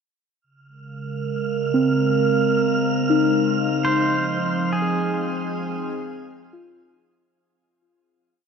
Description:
ambient; 70 BPM; 4/4; straight; Db major; A4 = 439 Hz
warbly tape-like pad; sustained chords; 0.9-7.3 s; Db3 to F5; -22 LUFS; right 2 dB; chorus, built-in reverb
wind-like tuned noise texture; texture; 1.0-7.3 s; F6; -30 LUFS; right 2 dB; built-in reverb
muted felt-like synth keys; arpeggios; 1.7-8.5 s; C4 to Ab4; -23 LUFS; left 1 dB; chorus, ping-pong delay
pedal steel guitar; melody; 3.8-6.4 s; Ab4 to C5; -26 LUFS; equal
wet shimmer reverb, RT60 8.9 s; dark, warm production; -19 LUFS; side -6 dB against mid
0.4-7.3 A section
fade-out 3.9-7.3
0.4 Db6; 3.9 Fm
| 0.43 1.29 2.15 3.00 | 3.86 4.72 5.58 6.43

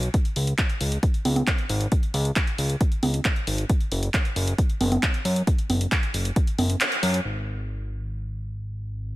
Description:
uplifting trance; 135 BPM; 4/4; straight; A4 = 440 Hz
fat analog bass; bass; 0.0-9.2 s; F#1 to F#2; -25 LUFS; equal; tube saturation, sidechain pumping
punchy analog drum machine; drums; 0.0-7.2 s; congas, handclaps, hi-hat; -26 LUFS; equal; sidechain pumping on hats, sidechain pumping on perc
electronic kick drum; drums; 0.1-6.5 s; -22 LUFS; equal; overdrive
light reverb; -22 LUFS; side -17 dB against mid
0.0-7.3 A section; 7.3-9.2 B section
kick drops out 6.8-7.3; band accent 6.8
| 0.14 0.58 1.03 1.47 | 1.92 2.36 2.81 3.25 | 3.70 4.14 4.58 5.03 | 5.47 5.92 6.36 6.81 | 7.25 7.70 8.14 8.59 | 9.03

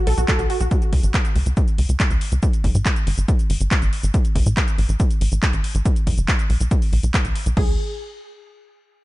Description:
uplifting trance; 140 BPM; 4/4; straight; A4 = 440 Hz
wide unison pluck; melody; 0.0-0.7, 7.6-7.7 s; F#4 to A4; -27 LUFS; right 1 dB; vintage 12-bit sampler grit, sidechain pumping, dub echo
tight sequencer bass; bass; 0.1-7.8 s; F#1 to A2; -19 LUFS; equal; sidechain pumping
big-room dance drum kit; drums; 0.1-7.7 s; crash cymbal, handclaps, hi-hat, shaker; -27 LUFS; equal
electronic kick drum; drums; 0.3-7.7 s; -19 LUFS; equal
little or no reverb; dark, warm production, nothing above 10.6 kHz; -17 LUFS; side -18 dB against mid
0.0-7.6 A section; 7.6-9.0 B section
0.0 B5; 0.7 C#5; 2.4 N.C.; 5.9 B5; 7.6 C#5
0.28 | 0.71 1.14 1.57 2.00 | 2.43 2.86 3.28 3.71 | 4.14 4.57 5.00 5.43 | 5.86 6.28 6.71 7.14 | 7.57

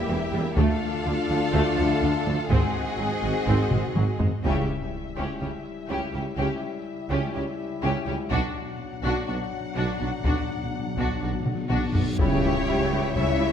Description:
cinematic, epic orchestral film score; 124 BPM; 4/4; straight; A4 = 440 Hz
rich symphonic violin section; melody; 0.0-13.5 s; C#5 to F#5; -36 LUFS; left 5 dB
rich symphonic violin section; second line; 0.0-13.5 s; F#4 to C#5; -33 LUFS; left 4 dB
clear symphonic string section; sustained chords; 0.0-4.4, 12.2-13.5 s; G3 to F5; -33 LUFS; left 1 dB
warm French horn section; sustained chords; 0.0-13.5 s; F#3 to G4; -32 LUFS; left 5 dB
warm trombone section; sustained chords; 0.0-4.2, 12.2-13.5 s; D3 to E4; -35 LUFS; right 4 dB
clear studio viola section; accompaniment; 0.1-13.5 s; D3 to E4; -33 LUFS; right 1 dB
mellow tuba; bass; 0.1-13.5 s; E1 to D2; -32 LUFS; right 3 dB
rich symphonic cello section; bass; 0.1-13.5 s; D2 to C#3; -31 LUFS; right 2 dB
rich symphonic double bass section; bass; 0.1-13.5 s; E1 to D2; -32 LUFS; right 3 dB
taiko ensemble; drums; 0.6-5.4, 8.3-13.5 s; -28 LUFS; left 1 dB
impact and reverse cymbal; sound effects; 4.4-6.4, 11.9-13.5 s; -35 LUFS; left 1 dB
timpani; percussion; 8.3-12.1 s; B2; -32 LUFS; left 1 dB
moderate concert hall reverb, RT60 1.9 s; -23 LUFS; side -8 dB against mid
0.0-4.4 A section; 4.4-12.2 B section; 12.2-13.5 C section
drum fill 3.7-4.4, 11.5-12.2; band accent 4.4-4.9; impact 4.4-6.4, 12.2-13.5; timpani fill 8.3-12.2; reverse cymbal 11.9
0.0 Edim; 0.6 Dm; 2.5 G#7; 4.4 C#dim; 8.3 Bm; 12.2 C#dim
0.09 | 0.57 1.06 1.54 2.02 | 2.51 2.99 3.48 3.96 | 4.44 4.93 5.41 5.90 | 6.38 6.86 7.35 7.83 | 8.31 8.80 9.28 9.77 | 10.25 10.73 11.22 11.70 | 12.19 12.67 13.15

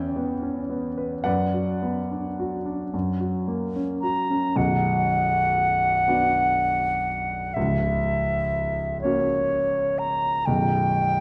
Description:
classical, romantic duo for flute and grand piano; 35-43 BPM (dotted quarters); 6/8; rubato; B minor; A4 = 440 Hz
clear concert grand piano; accompaniment; 0.0-11.2 s; B0 to G5; -28 LUFS; equal
concert flute; melody; 4.0-11.2 s; C#5 to A#5; -25 LUFS; equal
wet recital hall reverb, RT60 1.7 s; dark, warm production; -24 LUFS; mono
0.0-4.6 A section; 4.6-11.2 B section
0.0 C#m7b5/E; 1.3 Bm/F#; 2.9 F#; 4.6 Bm; 7.6 F#7/C#; 10.5 N.C.
| 1.25 2.93 | 4.56 6.08 | 7.57 9.04 | 10.47

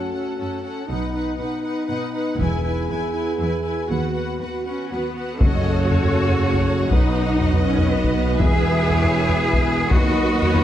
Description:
cinematic, epic orchestral film score; 120 BPM; 3/4; straight; A4 = 440 Hz
clear symphonic violin section; melody; 0.0-10.6 s; B4 to G#5; -33 LUFS; left 4 dB
rich studio violin section; second line; 0.0-10.6 s; A4 to B5; -31 LUFS; left 2 dB
warm symphonic viola section; accompaniment; 0.0-10.6 s; C#4 to D#5; -29 LUFS; right 2 dB
mellow French horn section; sustained chords; 0.0-10.6 s; A3 to G#4; -27 LUFS; left 2 dB
clear symphonic cello section; bass; 0.0-10.6 s; D#2 to G#4; -26 LUFS; equal
rich symphonic double bass section; bass; 0.9-10.6 s; E1 to F#2; -25 LUFS; right 2 dB
taiko ensemble; drums; 2.4-10.6 s; -21 LUFS; equal
mellow trombone section; sustained chords; 5.4-10.6 s; B2 to F#3; -28 LUFS; right 2 dB
rich symphonic string section; sustained chords; 5.4-10.6 s; B3 to E5; -31 LUFS; left 2 dB
dark tuba; bass; 5.4-10.6 s; E1 to D#2; -25 LUFS; right 2 dB
moderate scoring stage reverb, RT60 2.0 s; dark, warm production; -18 LUFS; side -11 dB against mid
0.0-5.4 A section; 5.4-10.6 B section
0.0 F#m; 0.9 B; 2.4 E; 3.9 B/D#; 5.4 F#m; 6.9 B; 8.4 E; 9.9 B/D#
0.40 | 0.90 1.40 1.90 | 2.40 2.90 3.40 | 3.90 4.41 4.91 | 5.41 5.91 6.41 | 6.91 7.41 7.91 | 8.41 8.91 9.41 | 9.91 10.41

